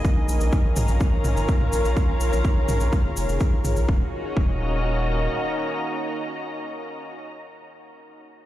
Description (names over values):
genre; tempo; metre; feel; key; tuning
melodic techno; 125 BPM; 4/4; straight; Eb minor; A4 = 439 Hz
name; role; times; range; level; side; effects
deep dark ambient pad; sustained chords; 0.0-7.1 s; Eb4 to Gb5; -31 LUFS; left 1 dB; chorus, built-in reverb, sidechain pumping
round analog bass; bass; 0.0-5.3 s; Eb1 to Bb1; -23 LUFS; equal; sidechain pumping
analog drone; drone; 0.0-7.1 s; Eb3 to Bb3; -34 LUFS; left 1 dB; chorus, sidechain pumping
electronic kick drum; drums; 0.0-4.5 s; none; -21 LUFS; equal; none
cabasa; percussion; 0.0-3.9 s; none; -37 LUFS; left 2 dB; none
muted studio string section; texture; 0.0-7.3 s; Db4 to Bb5; -30 LUFS; equal; sidechain pumping
electronic toms; drums; 0.8-3.7 s; none; -28 LUFS; right 1 dB; overdrive
room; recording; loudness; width
studio reverb; played on a big sound system in a bare room, stone room reverb; -20 LUFS; side -14 dB against mid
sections
0.0-3.9 A section; 3.9-7.7 B section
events
none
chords
0.0 Bbm; 3.9 Ebm7